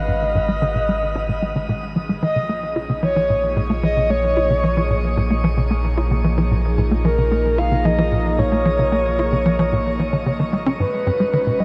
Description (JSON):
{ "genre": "ambient", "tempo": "112 BPM", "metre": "4/4", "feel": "straight", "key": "Bb phrygian", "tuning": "A4 = 441 Hz", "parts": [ { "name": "breathy flute-like synth lead", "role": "melody", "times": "0.0-11.6 s", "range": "Bb4 to F5", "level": "-24 LUFS", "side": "equal", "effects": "chorus, delay" }, { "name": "phased analog pad", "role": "sustained chords", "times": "0.0-11.6 s", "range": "Eb3 to Eb5", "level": "-31 LUFS", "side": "equal", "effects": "phaser, chorus" }, { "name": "warm sub bass", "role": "bass", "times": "0.0-11.6 s", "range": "Ab1 to Bb1", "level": "-25 LUFS", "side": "equal", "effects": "none" }, { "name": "tight sequencer bass", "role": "riff", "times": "0.1-11.6 s", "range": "Ab2 to F4", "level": "-24 LUFS", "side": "equal", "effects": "analog chorus, delay" } ], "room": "wet shimmer reverb, RT60 8.8 s", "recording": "none", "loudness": "-19 LUFS", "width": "mono", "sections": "0.0-11.6 A section", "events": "fade-in on analog synth pad 0.0-11.6; filter sweep on analog synth bass 0.0-11.6", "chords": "0.0 Abm; 2.2 Bbm; 10.8 Abm" }